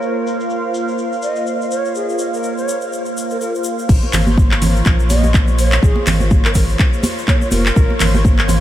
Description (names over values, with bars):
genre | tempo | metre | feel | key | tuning
afro house | 124 BPM | 4/4 | swing 57% on 16ths | Bb minor | A4 = 435 Hz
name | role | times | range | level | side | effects
breathy hollow bansuri | melody | 0.0-8.2 s | Ab4 to Eb5 | -24 LUFS | right 1 dB | diffuse ambient delay
warm analog pad | sustained chords | 0.0-8.6 s | Bb3 to F5 | -22 LUFS | equal | chorus, sidechain pumping
tube shaker | percussion | 0.0-8.6 s | none | -31 LUFS | left 3 dB | none
warm sub bass | bass | 3.9-8.6 s | F1 to Bb1 | -16 LUFS | equal | sidechain pumping
afro-pop drum kit | drums | 3.9-8.6 s | crash cymbal, handclaps, hi-hat | -21 LUFS | left 1 dB | studio reverb
electronic kick drum | drums | 3.9-8.4 s | none | -13 LUFS | equal | studio reverb
congas | percussion | 4.0-8.6 s | none | -20 LUFS | right 2 dB | none
room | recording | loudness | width
light reverb, studio reverb | low-pass filter | -13 LUFS | side -12 dB against mid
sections
0.0-3.9 A section; 3.9-8.6 B section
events
filter sweep 0.0-3.9; drop 3.9-8.6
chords
0.0 Bbsus2; 3.9 Bbm9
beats
| 0.02 0.50 0.99 1.47 | 1.96 2.44 2.92 3.41 | 3.89 4.38 4.86 5.34 | 5.83 6.31 6.79 7.28 | 7.76 8.25